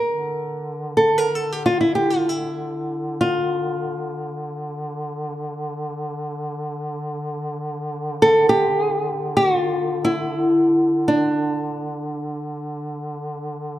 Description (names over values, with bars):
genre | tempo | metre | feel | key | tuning
caucasian folk, Caucasian lament | free time | none | none | D minor | A4 = 444 Hz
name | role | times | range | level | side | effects
nylon-string guitar | melody | 0.0-13.8 s | D4 to Bb4 | -18 LUFS | equal | none
mellow duduk | drone | 0.1-13.8 s | D3 | -28 LUFS | equal | none
room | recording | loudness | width
moderate concert hall reverb, RT60 1.8 s | dark, warm production | -20 LUFS | side -13 dB against mid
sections
0.0-13.8 A section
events
none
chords
none